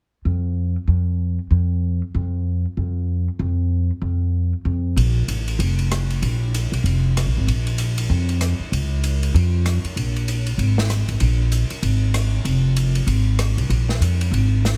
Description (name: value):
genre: modal jazz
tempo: 192 BPM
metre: 4/4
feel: swing 60% on 8ths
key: Bb minor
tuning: A4 = 440 Hz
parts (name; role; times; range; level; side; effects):
- upright bass; bass; 0.3-14.8 s; F1 to F2; -21 LUFS; equal; none
- open jazz drum kit; drums; 5.0-14.7 s; hi-hat, ride cymbal, rim click, snare drum; -31 LUFS; equal; none
room: little or no reverb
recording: heavily compressed radio sound, multiband compression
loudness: -21 LUFS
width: mono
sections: 0.0-5.0 A section; 5.0-14.8 B section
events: none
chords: none